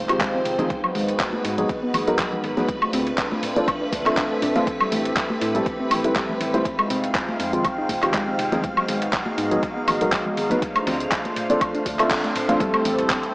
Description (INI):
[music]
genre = deep house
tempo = 121 BPM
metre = 4/4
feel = swing 54% on 16ths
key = unclear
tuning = A4 = 439 Hz
[part]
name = warm analog pad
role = sustained chords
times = 0.0-13.3 s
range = Ab3 to C5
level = -29 LUFS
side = equal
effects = chorus, vintage 12-bit sampler grit, sidechain pumping
[part]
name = organ-like FM bass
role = bass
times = 0.0-13.0 s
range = D1 to A2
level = -34 LUFS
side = equal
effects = sidechain pumping
[part]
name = string machine, violins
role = texture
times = 0.0-13.3 s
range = B4 to F5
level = -32 LUFS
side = equal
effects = ensemble chorus
[part]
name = warbly tape-like pad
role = texture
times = 0.0-13.3 s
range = D4 to B5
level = -30 LUFS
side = equal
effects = chorus, built-in reverb, sidechain pumping
[part]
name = soft round pluck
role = arpeggios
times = 0.1-13.2 s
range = F#3 to A4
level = -30 LUFS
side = equal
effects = chorus, sidechain pumping, tape echo
[part]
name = felt-muted upright piano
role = stabs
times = 0.1-13.3 s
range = Eb3 to F5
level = -25 LUFS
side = equal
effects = sidechain pumping, tape echo
[part]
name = deep house drum kit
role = drums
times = 0.1-13.3 s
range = handclaps, hi-hat, woodblock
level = -24 LUFS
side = equal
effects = none
[part]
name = dusty soul sampler-style drum kit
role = drums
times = 0.2-13.2 s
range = ride cymbal, snare drum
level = -35 LUFS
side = equal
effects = overdrive, high-pass filter on cymbals, high-pass filter on snare, high-pass filter on room
[part]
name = electronic kick drum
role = drums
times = 0.2-13.2 s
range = none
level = -30 LUFS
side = equal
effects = none
[part]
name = congas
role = percussion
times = 0.6-12.6 s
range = none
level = -33 LUFS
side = equal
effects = sidechain pumping on perc
[sound]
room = moderate echo chamber reverb, RT60 1.9 s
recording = cassette tape, small speaker sound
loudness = -20 LUFS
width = side -25 dB against mid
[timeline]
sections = 0.0-12.6 A section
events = band accent 12.1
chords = 0.0 Fm7; 0.7 G#m7; 2.7 Dm7; 4.7 Am7; 6.7 Fm7; 8.6 G#m7; 10.6 Dm7; 12.6 Am7